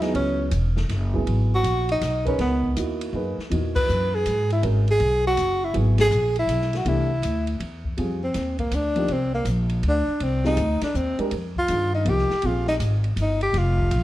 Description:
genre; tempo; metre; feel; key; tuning
modal jazz; 161 BPM; 3/4; swing 65% on 8ths; C# dorian, F dorian from 8.0 s; A4 = 442 Hz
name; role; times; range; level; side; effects
breathy tenor saxophone; melody; 0.0-14.0 s; Bb3 to B4; -23 LUFS; equal; none
dark upright piano; accompaniment; 0.0-13.5 s; A#2 to B4; -28 LUFS; right 1 dB; none
upright bass; bass; 0.0-14.0 s; E1 to G#2; -24 LUFS; equal; none
open jazz drum kit; drums; 0.0-14.0 s; crash cymbal, hi-hat, kick drum, ride cymbal, snare drum; -34 LUFS; left 1 dB; none
room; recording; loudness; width
light reverb; dark, warm production; -20 LUFS; side -15 dB against mid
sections
0.0-8.0 A section; 8.0-14.0 B section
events
band accent 3.7, 5.9; tenor saxophone solo 8.0-14.0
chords
0.0 C#m11; 6.9 C69; 8.0 F9sus4; 12.4 Bb7sus2

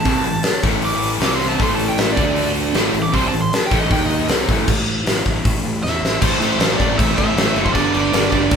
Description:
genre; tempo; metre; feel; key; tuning
hard rock; 156 BPM; 4/4; straight; A minor; A4 = 437 Hz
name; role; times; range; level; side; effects
biting lead guitar; melody; 0.0-8.6 s; C5 to D6; -23 LUFS; right 2 dB; overdrive
cranked stack guitar; riff; 0.0-8.6 s; G2 to D#4; -24 LUFS; left 7 dB; overdrive
crunchy overdriven guitar; riff; 0.0-8.6 s; G2 to D#4; -23 LUFS; right 6 dB; phaser
raw garage guitar; riff; 0.0-8.6 s; G2 to E4; -26 LUFS; right 1 dB; overdrive
fuzz fingered electric bass; bass; 0.0-8.6 s; F#1 to E2; -25 LUFS; equal; overdrive
big rock drum kit; drums; 0.1-8.6 s; crash cymbal, hi-hat, kick drum, snare drum; -18 LUFS; left 1 dB; none
room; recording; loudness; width
moderate large studio reverb, RT60 1.0 s; band playing live in one room; -15 LUFS; side -6 dB against mid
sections
0.0-4.7 A section; 4.7-6.2 B section; 6.2-8.6 C section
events
lead electric guitar solo 0.0-4.7; drum fill 5.8-6.2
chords
0.0 Am; 1.2 C5; 1.6 A5; 2.2 D5; 2.8 Am; 3.9 D#5; 4.3 Am; 4.7 A5; 6.2 Am; 7.8 G

